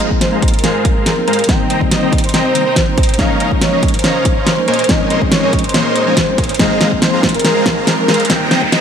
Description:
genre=future bass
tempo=141 BPM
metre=4/4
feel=half-time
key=Ab major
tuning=A4 = 440 Hz
part: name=warm velvety synth lead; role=melody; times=0.0-8.8 s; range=Bb4 to G5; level=-19 LUFS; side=equal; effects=chorus, sidechain pumping, tape echo
part: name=mellow tine electric piano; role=accompaniment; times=0.0-8.8 s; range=Eb3 to Eb4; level=-21 LUFS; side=left 2 dB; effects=medium stereo tremolo, sidechain pumping
part: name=clear symphonic string section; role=sustained chords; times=0.0-8.8 s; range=F3 to Bb4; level=-25 LUFS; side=equal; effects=none
part: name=concert harp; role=arpeggios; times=0.0-1.9 s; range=F4 to C5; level=-33 LUFS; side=left 1 dB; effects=none
part: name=dense compressed supersaw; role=riff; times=0.0-8.8 s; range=Ab3 to C6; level=-18 LUFS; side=equal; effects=sidechain pumping, low-pass filter
part: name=pop drum kit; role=drums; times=0.0-8.8 s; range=hi-hat, snare drum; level=-16 LUFS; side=equal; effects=studio reverb
part: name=electronic kick drum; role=drums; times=0.1-8.7 s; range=none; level=-17 LUFS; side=equal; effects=studio reverb
part: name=riser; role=sound effects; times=7.4-8.8 s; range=none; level=-24 LUFS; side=right 3 dB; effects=none
room=moderate lush hall reverb, RT60 1.9 s, digital ambience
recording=high-pass filter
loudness=-11 LUFS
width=side -8 dB against mid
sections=0.0-8.8 A section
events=build-up 0.0-8.8; drum fill 0.0-8.8; riser 7.4-8.8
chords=0.0 Ab69; 1.5 Cm7; 3.2 Db69; 4.7 Bbm11; 6.6 Ab69; 8.3 Cm7

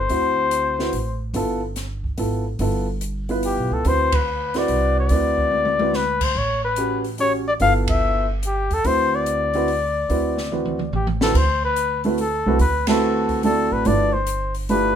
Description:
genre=jazz, small-group swing and bop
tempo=144 BPM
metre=3/4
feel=swing 66% on 8ths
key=D mixolydian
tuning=A4 = 440 Hz
part: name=mellow flugelhorn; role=melody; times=0.0-1.2, 3.5-15.0 s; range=G4 to F5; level=-21 LUFS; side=left 3 dB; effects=none
part: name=upright bass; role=bass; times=0.0-15.0 s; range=G1 to Eb2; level=-25 LUFS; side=right 1 dB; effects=none
part: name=dark baby grand piano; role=accompaniment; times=0.1-14.9 s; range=D3 to D5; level=-23 LUFS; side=right 3 dB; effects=none
part: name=open jazz drum kit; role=drums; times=0.1-14.8 s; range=crash cymbal, hi-hat, kick drum, ride cymbal, snare drum, toms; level=-28 LUFS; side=equal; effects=none
room=moderate studio reverb, RT60 0.7 s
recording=minimal, uncompressed stereo recording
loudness=-18 LUFS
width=side -9 dB against mid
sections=0.0-11.3 A section; 11.3-15.0 A section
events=band accent 4.1, 7.8, 12.8; drum fill 5.5-5.9, 10.5-11.3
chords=0.1 D9; 1.3 G13; 3.8 D13; 6.3 A13; 7.6 G13; 8.8 D13; 13.9 G13

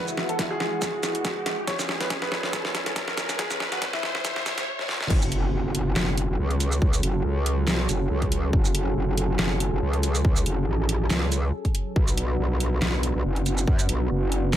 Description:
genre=heavy wobble dubstep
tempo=140 BPM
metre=4/4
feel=swing 54% on 16ths, half-time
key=F# minor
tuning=A4 = 440 Hz
part: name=bright grand piano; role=melody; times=0.0-4.7 s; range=C#4 to C#5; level=-32 LUFS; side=equal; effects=ping-pong delay
part: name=lush unison pad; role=sustained chords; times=0.0-14.6 s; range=E2 to A4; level=-32 LUFS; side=right 1 dB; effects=chorus, sidechain pumping
part: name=riser and impact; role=sound effects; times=0.0-6.8 s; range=none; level=-32 LUFS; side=equal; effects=none
part: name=dubstep drum kit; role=drums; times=0.1-14.6 s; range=crash cymbal, handclaps, hi-hat, shaker, snare drum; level=-27 LUFS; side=equal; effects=overdrive
part: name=electronic kick drum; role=drums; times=0.4-13.8 s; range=none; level=-24 LUFS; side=equal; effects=none
part: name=metallic wobble bass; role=bass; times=5.1-14.6 s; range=F#1 to F#2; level=-24 LUFS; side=equal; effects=chorus, overdrive
room=little or no reverb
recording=high-pass filter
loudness=-22 LUFS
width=side -11 dB against mid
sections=0.0-5.1 A section; 5.1-14.6 B section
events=build-up 0.0-5.1; drum fill 0.0-4.7, 4.8-5.1; riser 0.0-4.7; filter sweep 0.0-5.1; drop 5.1-14.6; impact 5.1-6.8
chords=0.0 Eadd9; 1.7 C#m/E; 5.1 F#madd9; 12.0 Bm

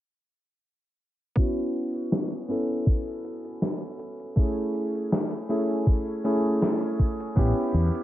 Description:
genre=vaporwave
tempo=80 BPM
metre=4/4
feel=swing 55% on 16ths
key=A major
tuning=A4 = 443 Hz
part: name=clear electric grand piano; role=accompaniment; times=1.4-8.0 s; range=A3 to A4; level=-27 LUFS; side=equal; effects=wide subtle chorus, analog delay
part: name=electronic kick drum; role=drums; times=1.4-7.5 s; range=none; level=-22 LUFS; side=equal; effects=overdrive
part: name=gated 80s digital drum machine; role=drums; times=1.4-8.0 s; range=hi-hat, snare drum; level=-28 LUFS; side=equal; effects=gated reverb, gated reverb snare, overdrive
part: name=mellow fretless electric bass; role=bass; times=7.4-7.9 s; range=A1 to E2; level=-22 LUFS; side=equal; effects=none
room=light reverb, digital ambience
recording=cassette tape, low-pass filter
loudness=-24 LUFS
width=side -14 dB against mid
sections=1.4-8.0 A section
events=none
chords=1.4 A6; 4.4 Amaj7; 7.4 A7

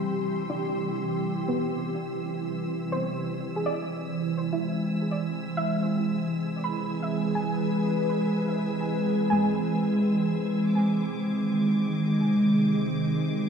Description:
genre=ambient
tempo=62 BPM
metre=4/4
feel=straight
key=unclear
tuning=A4 = 440 Hz
part: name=soft additive organ-like pad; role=sustained chords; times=0.0-13.5 s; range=C3 to C6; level=-25 LUFS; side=right 1 dB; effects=ensemble chorus, built-in reverb
part: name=soft round pluck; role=arpeggios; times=0.0-13.5 s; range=G#3 to B5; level=-32 LUFS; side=right 1 dB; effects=wide subtle chorus, tape echo
part: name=bowed-like drone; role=drone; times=1.4-13.5 s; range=C3 to C4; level=-40 LUFS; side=right 2 dB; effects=built-in reverb
part: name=clear studio violin section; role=texture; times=0.0-13.5 s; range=D6 to E6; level=-43 LUFS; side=left 1 dB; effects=none
room=wet concert hall reverb, RT60 2.1 s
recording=dark, warm production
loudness=-24 LUFS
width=side -7 dB against mid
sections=0.0-13.5 A section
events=fade-in on synth drone 0.0-13.5; fade-in on violin section 0.0-13.5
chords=0.0 C; 2.9 E; 10.7 Ab

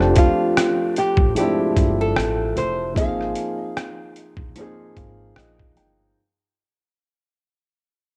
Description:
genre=lo-fi hip hop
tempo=75 BPM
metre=4/4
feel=swing 57% on 16ths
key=unclear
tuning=A4 = 439 Hz
part: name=dark upright piano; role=accompaniment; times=0.0-6.2 s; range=F3 to G5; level=-25 LUFS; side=equal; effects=cassette tape
part: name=upright bass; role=bass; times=0.0-6.1 s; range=F1 to Bb1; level=-27 LUFS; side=equal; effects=none
part: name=trip hop sampler-style drum kit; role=drums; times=0.0-6.0 s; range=hi-hat, kick drum, rim click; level=-23 LUFS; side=equal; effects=cassette tape
part: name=nylon-string guitar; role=melody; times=0.2-5.3 s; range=F4 to F5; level=-25 LUFS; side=equal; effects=cassette tape
room=light reverb, small room ambience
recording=home recording on cassette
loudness=-20 LUFS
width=mono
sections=0.0-6.2 A section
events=fade-out 0.0-6.2; upright piano fill 4.6-6.2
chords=0.0 F69; 3.0 Ab69

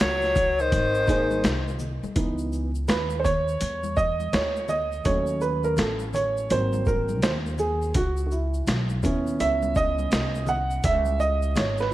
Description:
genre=hip hop, jazz-hop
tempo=83 BPM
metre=4/4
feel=swing 63% on 16ths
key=unclear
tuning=A4 = 440 Hz
part: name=clear alto saxophone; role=melody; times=0.0-1.8 s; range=B#4 to C#5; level=-24 LUFS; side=left 1 dB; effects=none
part: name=breathy tenor saxophone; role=second line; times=0.0-1.8 s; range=D#3 to F#3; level=-29 LUFS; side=left 3 dB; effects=none
part: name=upright bass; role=bass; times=0.0-11.9 s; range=G#1 to E2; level=-28 LUFS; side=equal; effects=none
part: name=boom bap sampler-style drum kit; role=drums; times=0.0-11.9 s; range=hi-hat, kick drum, shaker, snare drum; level=-26 LUFS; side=equal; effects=none
part: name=tube shaker and congas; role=percussion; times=0.2-11.9 s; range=none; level=-38 LUFS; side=left 4 dB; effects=none
part: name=dark grand piano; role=accompaniment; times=1.1-11.9 s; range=E3 to F#5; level=-25 LUFS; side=right 3 dB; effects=none
room=light reverb, studio ambience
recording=vinyl crackle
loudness=-22 LUFS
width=side -15 dB against mid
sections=0.0-2.2 A section; 2.2-11.9 B section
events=grand piano solo 2.2-11.9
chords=0.0 C#sus4; 0.7 G#; 2.2 C#m9; 5.1 D#m7b5; 6.5 G#7; 7.9 C#m9

